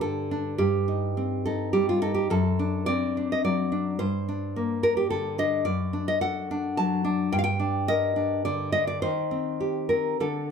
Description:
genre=romantic piece for solo classical guitar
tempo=107 BPM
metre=3/4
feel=rubato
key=G minor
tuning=A4 = 441 Hz
part: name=nylon-string guitar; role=solo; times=0.0-10.5 s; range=F#2 to A5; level=-24 LUFS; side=equal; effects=none
room=light reverb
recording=close, detailed microphones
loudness=-24 LUFS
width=side -6 dB against mid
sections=0.0-10.5 A section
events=none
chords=0.0 G5; 0.6 F9/G (rootless); 2.3 D7/F#; 4.0 Gm; 5.6 D/F#; 7.3 Gm; 9.0 Cm/Eb

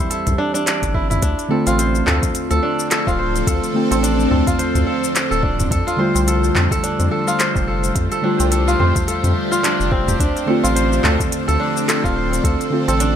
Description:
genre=organic downtempo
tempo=107 BPM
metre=4/4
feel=swing 57% on 16ths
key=D minor pentatonic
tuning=A4 = 441 Hz
part: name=muted felt-like synth keys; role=accompaniment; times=0.0-13.2 s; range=D3 to G4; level=-22 LUFS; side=right 1 dB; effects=chorus, sidechain pumping, ping-pong delay
part: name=kora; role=arpeggios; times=0.0-13.2 s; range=C4 to D5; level=-21 LUFS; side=right 1 dB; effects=vintage 12-bit sampler grit, ping-pong delay
part: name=organic electronic drum kit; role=drums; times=0.1-13.1 s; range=handclaps, hi-hat, shaker, toms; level=-23 LUFS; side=left 1 dB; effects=overdrive
part: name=round analog bass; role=bass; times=0.3-13.2 s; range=D1 to F2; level=-20 LUFS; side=equal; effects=sidechain pumping
part: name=electronic kick drum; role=drums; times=0.8-12.6 s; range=none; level=-22 LUFS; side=equal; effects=overdrive
part: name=tabla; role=percussion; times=0.8-13.0 s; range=none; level=-30 LUFS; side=right 3 dB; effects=none
part: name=bowed-like drone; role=sustained chords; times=2.7-13.2 s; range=F3 to C5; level=-25 LUFS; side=left 2 dB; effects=built-in reverb, phaser, sidechain pumping
room=light reverb, digital ambience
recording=none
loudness=-15 LUFS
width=side -9 dB against mid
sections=0.0-1.2 A section; 1.2-13.2 B section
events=none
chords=0.0 C; 1.2 Dm7; 5.7 F69; 10.2 Dm7

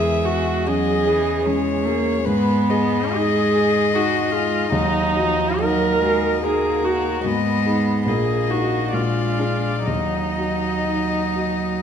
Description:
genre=classical, slow romantic movement for piano quintet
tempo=60-79 BPM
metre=3/4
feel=rubato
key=Eb minor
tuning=A4 = 440 Hz
part: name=warm violin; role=melody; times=0.0-11.8 s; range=Bb4 to E5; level=-25 LUFS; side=left 9 dB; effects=none
part: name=warm cello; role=second line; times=0.0-11.8 s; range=E3 to Bb3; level=-26 LUFS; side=right 7 dB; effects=none
part: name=dark baby grand piano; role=accompaniment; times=0.0-11.8 s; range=Bb1 to G#4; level=-22 LUFS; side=left 2 dB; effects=none
part: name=rich viola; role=accompaniment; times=0.0-11.8 s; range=Cb4 to Bb4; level=-22 LUFS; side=right 2 dB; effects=none
room=wet recital hall reverb, RT60 1.6 s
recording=dark, warm production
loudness=-18 LUFS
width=side -8 dB against mid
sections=0.0-11.8 A section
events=none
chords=0.0 C#m/E; 2.3 Abm; 4.7 Ebm; 7.3 Abm; 8.1 Ebm/Bb; 8.9 Bb7; 9.9 Ebm

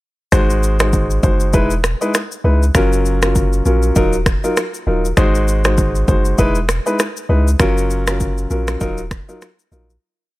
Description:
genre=afrobeats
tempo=99 BPM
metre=4/4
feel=swing 58% on 16ths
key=Ab mixolydian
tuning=A4 = 440 Hz
part: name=warm grand piano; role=accompaniment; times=0.3-9.9 s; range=Gb3 to C5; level=-18 LUFS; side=equal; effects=none
part: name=punchy sub bass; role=bass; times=0.3-10.0 s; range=Eb1 to Db2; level=-17 LUFS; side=equal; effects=none
part: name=afro-pop drum kit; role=drums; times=0.3-10.0 s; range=finger snaps, kick drum, rim click, shaker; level=-18 LUFS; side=equal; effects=none
room=digital ambience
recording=dry, gritty hardware recording, transformer saturation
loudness=-14 LUFS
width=side -18 dB against mid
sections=0.3-10.0 verse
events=fade-out 7.6-10.0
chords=0.3 Ab7; 1.5 Emaj7; 2.7 Gbmaj7; 4.0 Ebmadd9; 5.2 Ab7; 6.4 Emaj7; 7.6 Gbmaj7; 8.8 Ebmadd9

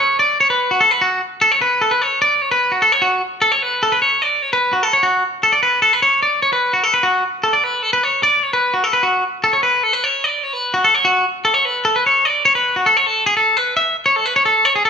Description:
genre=rock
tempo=149 BPM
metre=5/4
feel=straight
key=unclear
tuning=A4 = 439 Hz
part: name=twangy electric guitar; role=solo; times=0.0-14.9 s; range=F#4 to E5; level=-13 LUFS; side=equal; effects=none
room=moderate large studio reverb, RT60 1.4 s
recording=band playing live in one room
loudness=-13 LUFS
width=side -6 dB against mid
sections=0.0-13.1 A section; 13.1-14.9 B section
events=none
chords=none

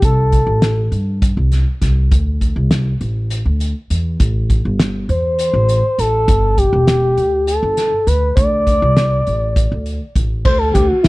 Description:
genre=progressive instrumental, band music in an uneven meter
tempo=201 BPM (eighths)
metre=7/8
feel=straight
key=unclear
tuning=A4 = 439 Hz
part: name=expressive synth lead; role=melody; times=0.0-1.2, 5.1-11.1 s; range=E4 to D5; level=-16 LUFS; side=equal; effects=chorus
part: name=upright bass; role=bass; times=0.0-11.1 s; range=E1 to D3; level=-16 LUFS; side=equal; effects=none
part: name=loose indie drum kit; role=drums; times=0.0-11.1 s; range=crash cymbal, hi-hat, kick drum, snare drum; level=-17 LUFS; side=equal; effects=none
room=little or no reverb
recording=none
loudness=-13 LUFS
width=side -21 dB against mid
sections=0.0-10.5 A section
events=none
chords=0.0 C5; 2.1 D5; 4.2 Am7; 6.3 G5; 8.4 D5; 10.5 Bm7 (rootless)

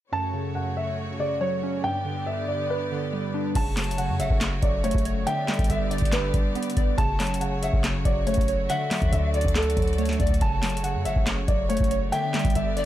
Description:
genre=hip hop, trap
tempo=140 BPM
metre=4/4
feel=half-time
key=F# phrygian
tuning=A4 = 439 Hz
part: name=dark concert grand piano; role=melody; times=0.1-12.9 s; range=A4 to A5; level=-29 LUFS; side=right 1 dB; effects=ping-pong delay
part: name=warbly lo-fi synth keys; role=accompaniment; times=0.1-12.9 s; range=F#2 to D5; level=-29 LUFS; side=equal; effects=chorus
part: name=clear studio string section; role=sustained chords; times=0.1-12.9 s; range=C#3 to D5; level=-34 LUFS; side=left 1 dB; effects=none
part: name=pan flute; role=second line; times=3.6-12.9 s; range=C#5 to A5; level=-35 LUFS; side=left 3 dB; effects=ping-pong delay
part: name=clean 808-style bass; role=bass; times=3.6-12.9 s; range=F#1 to F#2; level=-27 LUFS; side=equal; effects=none
part: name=booming analog drum machine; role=drums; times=3.6-12.8 s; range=crash cymbal, handclaps, hi-hat, kick drum, snare drum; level=-26 LUFS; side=equal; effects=none
room=small room ambience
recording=none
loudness=-22 LUFS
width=side -13 dB against mid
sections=0.1-3.6 A section; 3.6-12.9 B section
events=none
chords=0.1 F#m; 1.8 G; 3.6 F#m; 5.3 G; 7.0 F#m; 8.7 D; 10.4 F#m; 12.1 G

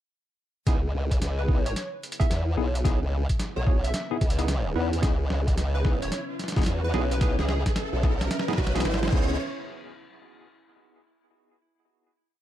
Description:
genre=glitch hop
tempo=110 BPM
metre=4/4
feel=swing 64% on 16ths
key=C# minor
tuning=A4 = 439 Hz
part: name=dark analog pad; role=sustained chords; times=2.0-9.4 s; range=C#4 to E5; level=-39 LUFS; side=right 1 dB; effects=chorus, sidechain pumping
part: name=barky tine electric piano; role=stabs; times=0.7-9.3 s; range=B3 to B4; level=-33 LUFS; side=left 1 dB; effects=medium stereo tremolo, sidechain pumping, tape echo
part: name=formant-sweep wobble bass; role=bass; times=0.7-9.4 s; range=G#1 to E2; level=-26 LUFS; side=equal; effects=chorus, overdrive
part: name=boom bap sampler-style drum kit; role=drums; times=0.7-9.3 s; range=crash cymbal, hi-hat, snare drum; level=-33 LUFS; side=equal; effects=small room ambience
part: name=electronic kick drum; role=drums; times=0.7-9.3 s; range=none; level=-25 LUFS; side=equal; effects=small room ambience
part: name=riser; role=sound effects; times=2.2-9.4 s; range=none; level=-38 LUFS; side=right 2 dB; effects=none
part: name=plucky unison lead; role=melody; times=1.4-9.1 s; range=E4 to E5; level=-36 LUFS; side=right 1 dB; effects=tape echo
room=little or no reverb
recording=none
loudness=-23 LUFS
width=side -12 dB against mid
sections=0.7-9.4 build; 9.4-11.6 final hit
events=build-up 0.7-9.4; drum fill 0.7-9.4; filter sweep on analog synth pad 0.7-9.4; riser 2.2-9.4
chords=0.7 C#m7; 9.4 N.C.

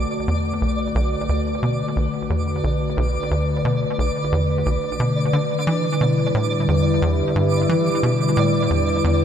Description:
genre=ambient, sequencer-driven space music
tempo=89 BPM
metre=4/4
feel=straight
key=B minor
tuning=A4 = 442 Hz
part: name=sweeping resonant pad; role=sustained chords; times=0.0-9.2 s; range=D3 to B4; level=-21 LUFS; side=left 1 dB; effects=chorus, shimmer reverb
part: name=tight sequencer bass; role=riff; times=0.0-9.2 s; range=B1 to E3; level=-22 LUFS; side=equal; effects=analog delay, shimmer reverb
part: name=twinkling granular texture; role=texture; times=0.0-9.2 s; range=D5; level=-27 LUFS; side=right 2 dB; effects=built-in reverb, shimmer reverb
room=wet plate reverb, RT60 2.8 s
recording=none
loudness=-18 LUFS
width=side -9 dB against mid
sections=0.0-9.2 A section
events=none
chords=0.0 Bm7; 5.7 Em7

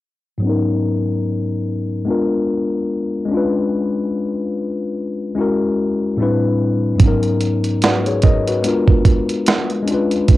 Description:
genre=lo-fi hip hop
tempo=73 BPM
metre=4/4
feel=swing 58% on 16ths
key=G# minor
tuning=A4 = 441 Hz
part: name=tine electric piano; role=accompaniment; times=0.4-10.4 s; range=G#2 to D#5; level=-17 LUFS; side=left 2 dB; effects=low-pass filter, cassette tape
part: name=dusty soul sampler-style drum kit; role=drums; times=7.0-10.4 s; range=hi-hat, kick drum, snare drum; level=-14 LUFS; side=right 2 dB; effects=cassette tape
room=moderate small room reverb, RT60 0.5 s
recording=home recording on cassette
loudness=-16 LUFS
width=side -16 dB against mid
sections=0.4-10.4 A section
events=filter sweep on tine electric piano 0.4-10.4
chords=0.4 G#m11; 2.1 A#7b9; 3.3 C#7b9; 5.4 F#7; 6.2 Am11; 7.0 G#m11; 8.6 A#7b9; 9.9 C#7b9

